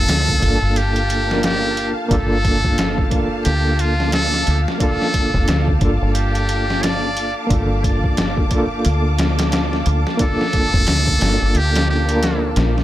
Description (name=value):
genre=trip hop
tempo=89 BPM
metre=4/4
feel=swing 59% on 16ths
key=G minor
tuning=A4 = 439 Hz
part: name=trumpet with metal mute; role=melody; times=0.0-12.5 s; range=F4 to D5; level=-22 LUFS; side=equal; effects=vintage 12-bit sampler grit, dub echo
part: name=overdriven reed electric piano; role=accompaniment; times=0.0-12.8 s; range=Bb3 to Bb4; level=-23 LUFS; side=right 1 dB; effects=fast tremolo, tape echo
part: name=string machine, cellos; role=sustained chords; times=0.0-12.8 s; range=F5 to D6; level=-26 LUFS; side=equal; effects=ensemble chorus
part: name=deep dub fingered electric bass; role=bass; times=0.0-12.8 s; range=F1 to D2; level=-19 LUFS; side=equal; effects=none
part: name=trip hop sampler-style drum kit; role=drums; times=0.1-12.8 s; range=hi-hat, kick drum, snare drum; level=-20 LUFS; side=equal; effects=overdrive
room=digital ambience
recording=none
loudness=-15 LUFS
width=side -14 dB against mid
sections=0.0-12.8 A section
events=none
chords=0.0 Gm9